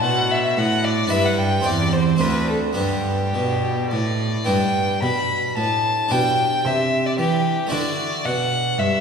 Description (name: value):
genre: classical, baroque-style sonata movement with continuo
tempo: 111 BPM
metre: 3/4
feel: rubato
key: G major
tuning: A4 = 441 Hz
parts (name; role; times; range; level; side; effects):
- clear violin; melody; 0.0-9.0 s; G4 to B5; -22 LUFS; left 2 dB; none
- harpsichord; accompaniment; 0.0-9.0 s; D2 to C5; -23 LUFS; right 2 dB; none
- rich cello; bass; 0.0-9.0 s; D2 to E3; -23 LUFS; right 2 dB; none
room: wet concert hall reverb, RT60 1.9 s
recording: recorded in a church or concert hall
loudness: -18 LUFS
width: side -6 dB against mid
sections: 0.0-4.5 A section; 4.5-9.0 B section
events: none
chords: 0.0 D5; 1.1 G; 1.6 C/E; 2.2 D5; 2.8 G; 6.1 G/B; 7.7 D